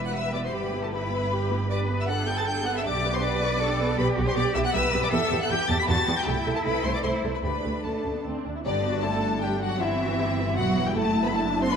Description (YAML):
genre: quick classical-period movement for string orchestra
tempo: 157 BPM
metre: 3/4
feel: straight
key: G major from 4.0 s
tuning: A4 = 443 Hz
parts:
  - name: warm symphonic viola section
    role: accompaniment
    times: 0.0-11.8 s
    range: G3 to B4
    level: -31 LUFS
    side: right 1 dB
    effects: none
  - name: rich studio cello section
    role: bass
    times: 0.0-11.8 s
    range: D3 to B4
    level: -30 LUFS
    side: right 1 dB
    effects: none
  - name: rich symphonic double bass section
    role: bass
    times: 0.0-11.8 s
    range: E1 to E2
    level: -29 LUFS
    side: right 2 dB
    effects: none
  - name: warm symphonic violin section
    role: melody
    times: 0.1-11.8 s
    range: D5 to B6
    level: -30 LUFS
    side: left 4 dB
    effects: none
  - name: warm symphonic violin section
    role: second line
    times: 0.1-11.8 s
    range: D4 to B5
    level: -30 LUFS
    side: left 1 dB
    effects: none
room: wet concert hall reverb, RT60 2.6 s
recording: dark, warm production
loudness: -23 LUFS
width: side -7 dB against mid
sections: 0.0-8.7 A section; 8.7-11.8 B section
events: none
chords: 0.0 Em; 0.5 Em/G; 1.7 G; 2.8 G/B; 5.1 Em; 6.3 Am/C; 7.4 Dsus4; 8.2 Csus2/D; 8.7 G; 9.8 C/G; 11.0 D/F#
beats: 0.15 | 0.54 0.93 1.31 | 1.70 2.08 2.47 | 2.85 3.22 3.60 | 3.98 4.36 4.74 | 5.12 5.50 5.88 | 6.26 6.64 7.04 | 7.44 7.84 8.25 | 8.65 9.04 9.42 | 9.81 10.19 10.57 | 10.95 11.33 11.71